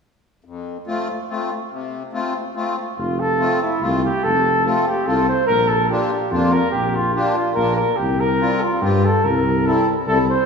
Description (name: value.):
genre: alpine folk, alpine dance band.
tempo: 144 BPM.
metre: 3/4.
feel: swing 53% on 8ths.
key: F major.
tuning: A4 = 440 Hz.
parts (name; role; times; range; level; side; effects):
accordion; accompaniment; 0.4-10.3 s; F2 to F4; -24 LUFS; left 2 dB; light tremolo tuning.
warm flugelhorn; melody; 3.0-10.5 s; E4 to C5; -19 LUFS; right 1 dB; none.
dark tuba; bass; 3.0-10.3 s; F1 to G2; -21 LUFS; left 1 dB; none.
room: wet scoring stage reverb, RT60 2.1 s.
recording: recorded in a church or concert hall, small room ambience.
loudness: -17 LUFS.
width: side -5 dB against mid.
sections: 0.5-3.0 A section; 3.0-10.5 B section.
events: none.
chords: 0.5 F; 5.5 Bb; 8.0 C7sus4; 9.2 C7.